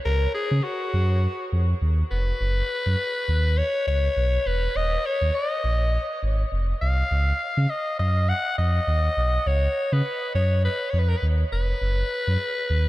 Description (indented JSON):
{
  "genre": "early-eighties boogie funk",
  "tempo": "102 BPM",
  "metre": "4/4",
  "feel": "swing 56% on 16ths",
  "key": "unclear",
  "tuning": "A4 = 440 Hz",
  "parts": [
    { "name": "raspy alto saxophone", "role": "melody", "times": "0.1-12.9 s", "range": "Gb4 to Gb5", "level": "-25 LUFS", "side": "left 1 dB", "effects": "none" },
    { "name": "sub bass with octave", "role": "bass", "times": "0.1-12.9 s", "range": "Eb1 to Db3", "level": "-22 LUFS", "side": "equal", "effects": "none" }
  ],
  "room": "moderate huge ambient reverb, RT60 8.3 s",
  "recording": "dreamy mix soaked in reverb",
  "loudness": "-21 LUFS",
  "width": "side -17 dB against mid",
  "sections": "0.0-12.9 A section",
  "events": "none",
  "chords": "0.0 Dbsus4; 2.4 Gb7sus4; 4.8 Ebsus24; 7.1 Db9sus4; 11.8 Gbsus4",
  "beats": "| 0.05 0.64 1.23 1.82 | 2.40 2.99 3.58 4.17 | 4.76 5.35 5.93 6.52 | 7.11 7.70 8.29 8.88 | 9.46 10.05 10.64 11.23 | 11.82 12.40"
}